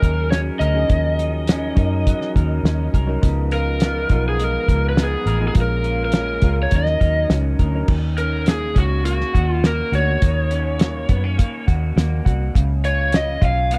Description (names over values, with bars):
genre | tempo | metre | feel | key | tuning
indie pop, bedroom pop | 103 BPM | 4/4 | straight | Eb minor | A4 = 440 Hz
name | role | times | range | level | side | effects
overdriven slide guitar | melody | 0.0-13.8 s | Gb4 to F5 | -26 LUFS | equal | lush chorus, tape echo
electric guitar through a small old amp | accompaniment | 0.0-13.8 s | Bb2 to Bb4 | -31 LUFS | equal | subtle chorus, vibrato effect
soft electric-piano-like synth keys | accompaniment | 0.0-7.9 s | F3 to Bb4 | -30 LUFS | equal | chorus, cassette tape
vintage muted fingered electric bass | bass | 0.0-13.8 s | A1 to Gb2 | -23 LUFS | equal | none
cloth-damped thuddy drum kit | drums | 0.0-13.8 s | crash cymbal, hi-hat, kick drum, snare drum | -21 LUFS | equal | none
room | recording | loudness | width
small room ambience | dark, warm production | -19 LUFS | mono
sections
0.0-7.9 A section; 7.9-13.8 A section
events
none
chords
0.0 Ebm7; 3.2 Db13; 5.6 Bbm7; 6.7 Ebm7; 12.6 Db6